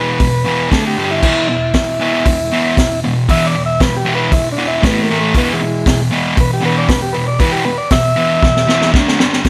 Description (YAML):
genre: garage rock duo or trio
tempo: 117 BPM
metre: 4/4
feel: straight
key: unclear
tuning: A4 = 436 Hz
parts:
  - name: overdriven combo organ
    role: melody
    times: 0.0-8.9 s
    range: E3 to E5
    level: -20 LUFS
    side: equal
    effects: none
  - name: fuzz guitar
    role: riff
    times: 0.0-9.5 s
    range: E2 to D4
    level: -18 LUFS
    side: equal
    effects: distortion
  - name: vintage drum kit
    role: drums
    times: 0.2-9.5 s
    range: crash cymbal, hi-hat, kick drum, snare drum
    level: -19 LUFS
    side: equal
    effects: none
room: light reverb, small room reverb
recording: none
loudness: -14 LUFS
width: mono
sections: 0.0-9.5 A section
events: transistor combo organ solo 0.0-9.5; drum fill 8.4-9.5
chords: 0.0 E5; 0.7 D5; 1.0 G5; 1.2 E5; 4.8 A5; 5.4 E; 8.9 D5; 9.2 G5